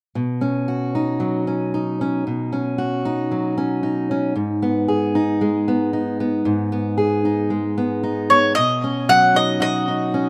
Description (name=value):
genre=folk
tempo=114 BPM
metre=4/4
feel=straight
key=B major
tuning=A4 = 440 Hz
part: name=fingerpicked steel-string acoustic guitar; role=accompaniment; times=0.2-10.3 s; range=G#2 to G#4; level=-22 LUFS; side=equal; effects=none
part: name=mandolin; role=melody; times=8.3-10.3 s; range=C#5 to F#5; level=-18 LUFS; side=equal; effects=none
room=light reverb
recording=rough home demo mix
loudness=-20 LUFS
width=mono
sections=0.2-8.6 A section; 8.6-10.3 B section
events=none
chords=0.2 Badd9; 4.4 G#m; 8.6 Badd9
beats=| 0.16 0.68 1.21 1.73 | 2.25 2.78 3.30 3.83 | 4.35 4.88 5.40 5.93 | 6.46 6.98 7.50 8.03 | 8.55 9.08 9.61 10.13